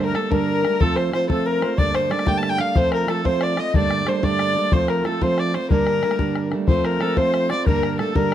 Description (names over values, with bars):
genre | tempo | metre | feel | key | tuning
celtic folk, Celtic jig | 122 BPM (dotted quarters) | 6/8 | straight | G minor | A4 = 440 Hz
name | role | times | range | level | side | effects
rich fiddle | melody | 0.0-8.3 s | A4 to A5 | -23 LUFS | left 1 dB | plate reverb
breathy bright jazz flute | second line | 0.0-8.3 s | A4 to G5 | -27 LUFS | left 5 dB | none
fingerpicked plugged-in steel-string acoustic guitar | accompaniment | 0.0-8.3 s | G2 to F4 | -22 LUFS | right 4 dB | none
bodhran | percussion | 0.1-8.3 s | none | -22 LUFS | left 2 dB | none
room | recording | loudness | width
moderate studio reverb, RT60 0.6 s | dark, warm production | -18 LUFS | side -11 dB against mid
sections
0.0-6.7 A section; 6.7-8.3 A section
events
none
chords
0.0 Gmadd9; 0.8 F; 1.8 Gmadd9; 2.8 F; 3.7 Gmadd9; 4.7 F; 5.7 Gmadd9; 6.7 F; 7.7 Gmadd9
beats
0.31 | 0.80 1.29 | 1.78 2.27 | 2.76 3.25 | 3.74 4.23 | 4.72 5.21 | 5.71 6.20 | 6.69 7.18 | 7.67 8.16